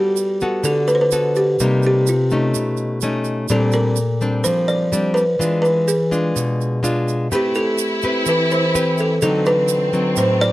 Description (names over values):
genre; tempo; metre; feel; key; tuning
bossa nova; 126 BPM; 4/4; straight; G major; A4 = 438 Hz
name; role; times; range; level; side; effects
buzzing kalimba; melody; 0.0-10.5 s; F4 to D5; -19 LUFS; equal; none
nylon-string guitar; accompaniment; 0.0-10.5 s; A2 to B4; -19 LUFS; left 1 dB; none
tube shaker; percussion; 0.2-10.5 s; none; -29 LUFS; right 13 dB; none
warm studio violin section; second line; 7.3-10.5 s; C4 to E4; -24 LUFS; equal; none
room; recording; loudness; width
light reverb; close, detailed microphones; -16 LUFS; side -16 dB against mid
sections
0.0-10.5 A section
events
none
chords
0.0 Gmaj9; 1.6 Cm7; 2.5 B9; 3.5 Bb69; 5.4 E7b9; 7.3 Am9; 9.2 D7b9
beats
0.16 0.64 1.12 | 1.59 2.07 2.54 3.02 | 3.50 3.97 4.45 4.93 | 5.40 5.88 6.36 6.83 | 7.31 7.79 8.27 8.74 | 9.22 9.70 10.17